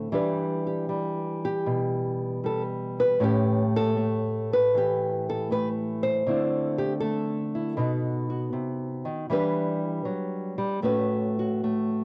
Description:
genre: solo jazz.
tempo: 78 BPM.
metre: 4/4.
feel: swing 69% on 8ths, rubato.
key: unclear.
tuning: A4 = 440 Hz.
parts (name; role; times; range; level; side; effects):
nylon-string guitar; solo; 0.0-12.0 s; A2 to C5; -27 LUFS; equal; cassette tape.
room: moderate studio reverb, RT60 0.5 s.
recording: home recording on cassette, lossy compression artefacts.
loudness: -27 LUFS.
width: mono.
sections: 0.0-12.0 A section.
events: none.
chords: 0.1 Em7; 3.2 A9; 6.3 Dsus2; 7.8 B7; 9.3 Em7; 10.8 A69.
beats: | 0.12 0.91 1.68 2.45 | 3.22 3.99 4.76 5.52 | 6.27 7.03 7.78 8.54 | 9.30 10.06 10.84 11.64.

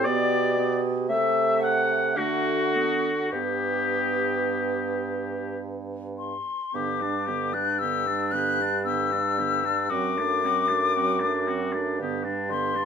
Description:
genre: classical, slow romantic movement for wind quintet.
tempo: 51-59 BPM.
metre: 3/4.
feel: rubato.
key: G major.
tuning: A4 = 445 Hz.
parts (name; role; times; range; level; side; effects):
hollow concert flute; melody; 0.0-12.9 s; F#4 to F#6; -27 LUFS; left 7 dB; none.
warm oboe; second line; 0.0-12.9 s; D4 to F#5; -28 LUFS; left 2 dB; none.
mellow French horn; accompaniment; 0.0-12.9 s; D3 to B4; -32 LUFS; right 3 dB; none.
warm clarinet; accompaniment; 0.0-12.9 s; A3 to D4; -33 LUFS; right 11 dB; none.
mellow bassoon; bass; 0.0-12.9 s; F#2 to D3; -30 LUFS; right 3 dB; none.
room: moderate large studio reverb, RT60 0.9 s.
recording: minimal, uncompressed stereo recording.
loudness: -23 LUFS.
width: side -7 dB against mid.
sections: 0.0-6.7 A section; 6.7-12.9 A section.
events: none.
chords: 0.1 G/B; 1.1 Am/C; 2.2 D; 3.3 G; 9.9 D7/F#; 12.0 G.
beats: | 0.07 1.10 2.18 | 3.33 4.49 5.63 | 6.74 7.80 8.85 | 9.90 10.95 11.99.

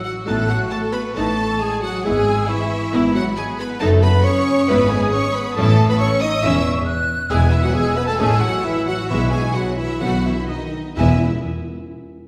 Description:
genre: quick classical-period movement for symphony orchestra.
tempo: 135 BPM.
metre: 4/4.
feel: straight.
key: E major.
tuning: A4 = 440 Hz.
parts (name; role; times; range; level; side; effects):
rich studio violin section; melody; 0.0-11.2 s; D#5 to E6; -29 LUFS; equal; none.
bright concert flute; second line; 0.0-11.2 s; G#5 to F#6; -30 LUFS; equal; none.
dark clarinet; second line; 0.0-11.2 s; D#4 to E5; -28 LUFS; equal; none.
rich studio violin section; second line; 0.0-11.2 s; D#4 to E5; -31 LUFS; equal; none.
mellow French horn section; sustained chords; 0.0-11.2 s; D#3 to E4; -27 LUFS; equal; none.
rich studio viola section; accompaniment; 0.3-11.2 s; G#3 to E4; -28 LUFS; equal; none.
warm studio cello section; bass; 0.3-11.2 s; E2 to B2; -26 LUFS; equal; none.
warm studio double bass section; bass; 0.3-11.2 s; E1 to B1; -25 LUFS; equal; none.
timpani; percussion; 7.3-11.2 s; E2 to B2; -30 LUFS; equal; none.
room: wet scoring stage reverb, RT60 1.7 s.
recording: heard from further back in the room.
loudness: -18 LUFS.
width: mono.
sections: 0.0-11.0 A section; 11.0-12.3 B section.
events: slowing down 6.4-11.0.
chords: 0.3 B7/A; 2.1 E/G#; 3.8 B/F#; 4.7 E/G#; 5.6 A; 7.3 E5; 8.2 A; 9.1 E69/B; 10.0 B7; 11.0 E.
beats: | 0.28 0.72 1.16 1.61 | 2.05 2.49 2.93 3.37 | 3.81 4.25 4.69 5.13 | 5.57 6.00 6.43 6.87 | 7.31 7.75 8.20 8.65 | 9.11 9.56 10.02 10.49 | 10.98.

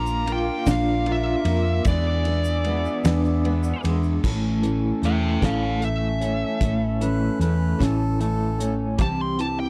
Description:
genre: folk rock and heartland rock.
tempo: 50 BPM (dotted quarters).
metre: 6/8.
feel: straight.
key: unclear.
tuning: A4 = 440 Hz.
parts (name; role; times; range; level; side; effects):
smooth overdriven lead guitar; melody; 0.0-9.7 s; C#5 to C6; -30 LUFS; equal; none.
picked steel-string acoustic guitar; accompaniment; 0.0-9.7 s; E2 to B4; -30 LUFS; equal; none.
mellow accordion; sustained chords; 0.0-9.7 s; C4 to D6; -40 LUFS; equal; none.
electric guitar through a small old amp; riff; 0.0-9.7 s; E2 to F4; -30 LUFS; equal; tremolo.
hollow-body short-scale fingered electric bass; bass; 0.0-9.7 s; A1 to F2; -27 LUFS; equal; none.
tube shaker; percussion; 0.1-4.1 s; none; -49 LUFS; equal; none.
cloth-damped thuddy drum kit; drums; 0.3-9.6 s; crash cymbal, hi-hat, kick drum, ride cymbal, snare drum; -30 LUFS; equal; none.
warm harmonica; second line; 7.0-8.8 s; A4 to B4; -34 LUFS; equal; none.
room: little or no reverb.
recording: dry, close 1970s-style studio recording.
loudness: -23 LUFS.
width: mono.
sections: 0.0-4.2 A section; 4.2-9.7 B section.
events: lead electric guitar solo 4.2-9.7.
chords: 0.0 Bb; 1.9 E7; 4.2 A; 9.0 C.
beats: 0.67 | 1.86 3.05 | 4.24 5.42 | 6.61 7.80 | 8.99.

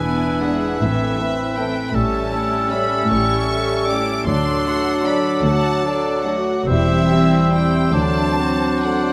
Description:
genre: classical.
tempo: 42-53 BPM (dotted quarters).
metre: 6/8.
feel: rubato.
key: unclear.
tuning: A4 = 440 Hz.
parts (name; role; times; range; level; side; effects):
rich chamber violin section; melody; 0.0-9.1 s; E5 to D6; -30 LUFS; equal; none.
clear oboe; second line; 0.0-9.1 s; A4 to C5; -30 LUFS; equal; none.
mellow hollow baroque flute; second line; 0.0-9.1 s; D6 to E6; -29 LUFS; equal; none.
warm chamber violin section; second line; 0.0-9.1 s; E4 to F#5; -32 LUFS; equal; none.
warm clarinet; second line; 0.0-9.1 s; C4 to D4; -28 LUFS; equal; none.
mellow bassoon; accompaniment; 0.0-9.0 s; E3 to G3; -28 LUFS; equal; none.
rich chamber viola section; accompaniment; 0.0-9.1 s; E3 to G4; -29 LUFS; equal; none.
concert harp; arpeggios; 0.0-9.1 s; E2 to F#5; -26 LUFS; equal; none.
rich chamber cello section; bass; 0.0-9.1 s; D2 to A2; -28 LUFS; equal; none.
rich studio double bass section; bass; 0.0-9.1 s; E1 to D2; -28 LUFS; equal; none.
mellow French horn section; sustained chords; 0.4-9.1 s; F#3 to D4; -28 LUFS; equal; none.
room: moderate scoring stage reverb, RT60 2.0 s.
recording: close, detailed microphones.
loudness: -18 LUFS.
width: mono.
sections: 0.0-9.1 A section.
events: none.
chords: 0.0 E7; 0.8 Am; 2.0 A7; 4.3 D; 6.7 C/E; 7.9 D7.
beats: 0.82 | 1.96 3.11 | 4.28 5.45 | 6.68 7.94.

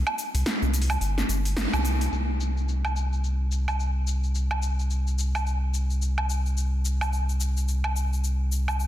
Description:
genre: organic downtempo.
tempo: 108 BPM.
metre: 4/4.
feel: swing 60% on 16ths.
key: unclear.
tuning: A4 = 440 Hz.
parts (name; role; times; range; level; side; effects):
round analog bass; bass; 0.0-8.9 s; G1 to C2; -24 LUFS; equal; none.
deep house drum kit; drums; 0.1-8.9 s; hi-hat, shaker, snare drum, woodblock; -30 LUFS; equal; overdrive, low-pass filter on hats, low-pass filter on snare, low-pass filter on perc, low-pass filter on room.
room: light reverb.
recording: dense, heavily limited modern master.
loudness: -24 LUFS.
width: side -13 dB against mid.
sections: 0.0-2.1 A section; 2.1-8.9 B section.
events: band accent 1.6; filter sweep on drum 2.1-8.9.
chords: none.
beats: 0.46 1.01 1.57 | 2.12 2.68 3.24 3.79 | 4.35 4.90 5.46 6.01 | 6.57 7.12 7.68 8.24 | 8.79.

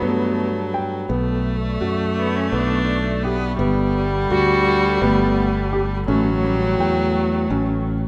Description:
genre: contemporary instrumental, chamber music in an uneven meter.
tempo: 169 BPM (eighths).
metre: 7/8.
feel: straight.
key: unclear.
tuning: A4 = 440 Hz.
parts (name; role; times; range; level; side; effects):
warm cello; melody; 0.0-8.1 s; G3 to F#4; -26 LUFS; equal; none.
clear viola; second line; 0.0-8.1 s; F#3 to B3; -25 LUFS; equal; none.
warbly tape-like pad; sustained chords; 0.0-8.1 s; A4 to C#6; -35 LUFS; equal; chorus, built-in reverb.
dark grand piano; arpeggios; 0.0-7.9 s; B3 to G5; -27 LUFS; equal; none.
modern bright fingered electric bass; bass; 0.0-8.1 s; G1 to G2; -26 LUFS; equal; none.
room: moderate scoring stage reverb, RT60 1.9 s.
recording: none.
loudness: -20 LUFS.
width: mono.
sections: 0.0-8.1 A section.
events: none.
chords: 0.0 Gmaj9; 1.1 Bm11; 3.6 Gmaj9; 6.1 A7.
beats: 0.03 0.38 0.74 | 1.09 1.45 1.81 2.16 2.52 2.88 3.23 | 3.59 3.94 4.30 4.66 5.01 5.37 5.72 | 6.08 6.43 6.79 7.14 7.50 7.86.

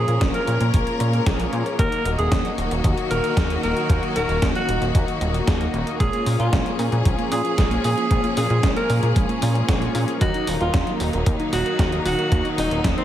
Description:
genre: italo disco.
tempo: 114 BPM.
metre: 4/4.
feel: straight.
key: Bb minor.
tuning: A4 = 440 Hz.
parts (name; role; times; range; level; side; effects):
raspy alto saxophone; melody; 0.0-13.0 s; C4 to Bb4; -25 LUFS; right 1 dB; digital delay.
clear studio string section; sustained chords; 0.0-13.0 s; Eb3 to Bb4; -27 LUFS; left 1 dB; none.
chorused polysynth; stabs; 0.0-13.0 s; Gb3 to Eb5; -28 LUFS; left 2 dB; cassette tape.
chorused synth bass; bass; 0.0-12.9 s; Eb1 to Bb2; -24 LUFS; equal; none.
gated 80s digital drum machine; drums; 0.1-13.0 s; hi-hat, snare drum; -28 LUFS; equal; gated reverb, gated reverb snare, overdrive, studio reverb.
electronic kick drum; drums; 0.2-12.9 s; none; -22 LUFS; equal; overdrive, studio reverb.
soft round pluck; arpeggios; 6.0-13.0 s; Ab3 to Bb4; -30 LUFS; right 2 dB; chorus, digital delay.
room: light reverb, digital ambience.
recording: heavily compressed radio sound.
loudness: -18 LUFS.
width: side -11 dB against mid.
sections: 0.0-13.0 A section.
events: none.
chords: 0.0 Bbm7; 1.8 Ebm; 6.0 Bbm7; 10.2 Ebm.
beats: 0.21 0.74 1.26 | 1.79 2.32 2.84 3.37 | 3.90 4.42 4.95 5.47 | 6.00 6.53 7.05 7.58 | 8.11 8.63 9.16 9.69 | 10.21 10.74 11.26 11.79 | 12.32 12.84.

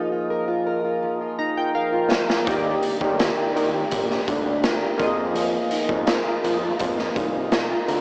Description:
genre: indie pop, bedroom pop.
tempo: 83 BPM.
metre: 4/4.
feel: straight.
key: unclear.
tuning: A4 = 440 Hz.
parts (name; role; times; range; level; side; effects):
chorused retro synth keys; accompaniment; 0.0-8.0 s; F3 to Bb5; -29 LUFS; equal; cassette tape.
fingerpicked plugged-in steel-string acoustic guitar; accompaniment; 0.0-8.0 s; Eb3 to Bb4; -28 LUFS; equal; lush chorus, vibrato effect, cassette tape.
raw garage drum kit; drums; 2.1-8.0 s; hi-hat, kick drum, snare drum; -27 LUFS; equal; none.
fat analog bass; bass; 2.5-8.0 s; Bb1 to F2; -30 LUFS; equal; none.
room: moderate studio reverb, RT60 0.5 s.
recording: home recording on cassette, small speaker sound.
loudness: -23 LUFS.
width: mono.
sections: 0.0-8.0 A section.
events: synth keys fill 1.0-2.5; drum fill 1.7-2.5.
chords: 0.0 Bb7sus4/F; 2.5 Ebmaj7; 5.0 Bb7sus4/F.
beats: 0.31 1.03 1.75 | 2.47 3.19 3.91 4.63 | 5.36 6.08 6.80 7.52.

